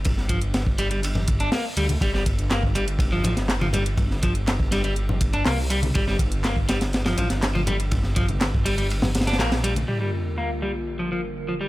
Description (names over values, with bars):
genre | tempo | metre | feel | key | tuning
breakbeat, breaks | 122 BPM | 4/4 | straight | unclear | A4 = 440 Hz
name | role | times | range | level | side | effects
detuned saw bass | bass | 0.0-9.9 s | G1 to D2 | -25 LUFS | equal | none
garage drum kit | drums | 0.0-9.9 s | handclaps, hi-hat | -31 LUFS | equal | low-pass filter on hats, low-pass filter on snare
crunchy breakbeat drum kit | drums | 0.1-9.8 s | hi-hat, kick drum, ride cymbal, snare drum | -25 LUFS | equal | none
congas | percussion | 0.1-9.9 s | none | -29 LUFS | left 1 dB | none
electric guitar at the edge of break-up | riff | 0.3-11.7 s | F3 to D4 | -27 LUFS | equal | tube saturation, low-pass filter, tape echo
phased analog pad | sustained chords | 9.9-11.7 s | D3 to Bb4 | -31 LUFS | equal | phaser, chorus, vintage 12-bit sampler grit, sidechain pumping
sub drop | sound effects | 9.9-11.7 s | none | -30 LUFS | equal | none
room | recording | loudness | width
studio ambience | none | -21 LUFS | side -17 dB against mid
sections
0.0-9.9 A section; 9.9-11.7 B section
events
band accent 9.4; impact 9.9-11.7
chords
0.0 Gm; 9.9 Gm7